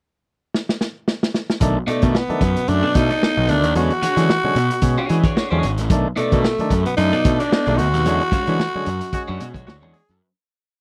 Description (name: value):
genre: funk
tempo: 112 BPM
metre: 4/4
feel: swing 56% on 16ths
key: unclear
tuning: A4 = 441 Hz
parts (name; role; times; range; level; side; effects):
- vintage drum kit; drums; 0.5-10.2 s; hi-hat, kick drum, snare drum; -23 LUFS; equal; none
- overdriven tonewheel organ; stabs; 1.6-10.0 s; B2 to D4; -27 LUFS; equal; none
- fuzz picked electric bass; bass; 1.6-10.2 s; G#1 to E3; -23 LUFS; equal; overdrive
- growling tenor saxophone; melody; 1.9-9.7 s; A3 to F#4; -23 LUFS; equal; none
- electric guitar at the edge of break-up; accompaniment; 1.9-10.0 s; G#3 to D#5; -27 LUFS; equal; phaser
- brilliant trombone; second line; 9.1-10.3 s; F#4 to G#4; -35 LUFS; equal; none
room: little or no reverb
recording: dry, close 1970s-style studio recording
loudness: -19 LUFS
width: mono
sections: 0.0-1.6 pickup bar; 1.6-10.2 groove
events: drum fill 0.5-1.6; fade-out 8.1-10.2; band accent 8.1-10.2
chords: 0.0 N.C.; 1.6 B7#9; 3.8 E13; 5.9 B7#9; 8.1 E13